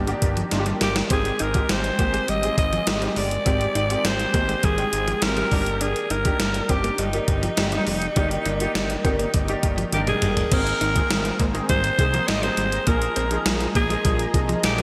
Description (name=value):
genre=1980s-style pop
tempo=102 BPM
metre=4/4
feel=straight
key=Eb major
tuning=A4 = 440 Hz
part: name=clear concert grand piano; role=accompaniment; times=0.0-14.8 s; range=Eb3 to G5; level=-30 LUFS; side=equal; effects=ensemble chorus
part: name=fat analog bass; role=bass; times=0.0-14.8 s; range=F1 to C2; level=-30 LUFS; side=equal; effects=none
part: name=gated 80s digital drum machine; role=drums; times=0.1-14.8 s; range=crash cymbal, hi-hat, kick drum, snare drum, toms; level=-26 LUFS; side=equal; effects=gated reverb, gated reverb snare
part: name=direct-recorded clean electric guitar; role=riff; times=0.2-14.8 s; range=F3 to Eb4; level=-34 LUFS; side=equal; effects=lush chorus
part: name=breathy alto saxophone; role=melody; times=0.8-14.8 s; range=Eb4 to Eb5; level=-27 LUFS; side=equal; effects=none
part: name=chorused pulse-width pad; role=sustained chords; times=10.5-14.8 s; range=Ab4 to Bb5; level=-35 LUFS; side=equal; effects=none
room=moderate lush hall reverb, RT60 2.0 s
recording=bright 1980s-style digital production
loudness=-22 LUFS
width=mono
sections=0.0-10.5 A section; 10.5-14.8 B section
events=drum fill 0.5-1.1, 9.9-10.5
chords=0.0 Ebmaj7; 1.1 Abmaj7; 5.5 Ebmaj7; 10.5 Abadd9; 12.9 Bb7sus4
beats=0.52 | 1.11 1.70 2.28 2.87 | 3.46 4.05 4.64 5.22 | 5.81 6.40 6.99 7.58 | 8.17 8.75 9.34 9.93 | 10.52 11.11 11.70 12.28 | 12.87 13.46 14.05 14.64